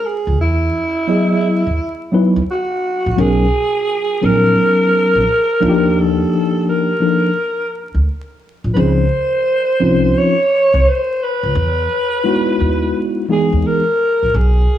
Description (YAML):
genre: hip hop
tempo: 86 BPM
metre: 4/4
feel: swing 65% on 16ths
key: unclear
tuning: A4 = 439 Hz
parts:
  - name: growling alto saxophone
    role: melody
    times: 0.0-14.8 s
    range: E4 to Db5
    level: -16 LUFS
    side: equal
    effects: slapback echo
  - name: upright bass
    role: bass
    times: 0.3-14.6 s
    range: Bb1 to E2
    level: -17 LUFS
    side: equal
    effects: none
  - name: mellow tine electric piano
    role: accompaniment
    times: 1.1-13.8 s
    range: E3 to D#5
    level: -15 LUFS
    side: left 1 dB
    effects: medium stereo tremolo
room: light reverb, small room ambience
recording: vinyl crackle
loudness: -13 LUFS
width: side -11 dB against mid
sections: 0.0-14.8 A section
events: none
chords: 0.4 Emaj9; 3.2 Cbmaj9; 5.6 Ebmaj9; 8.8 Dbmaj9; 11.6 Emaj9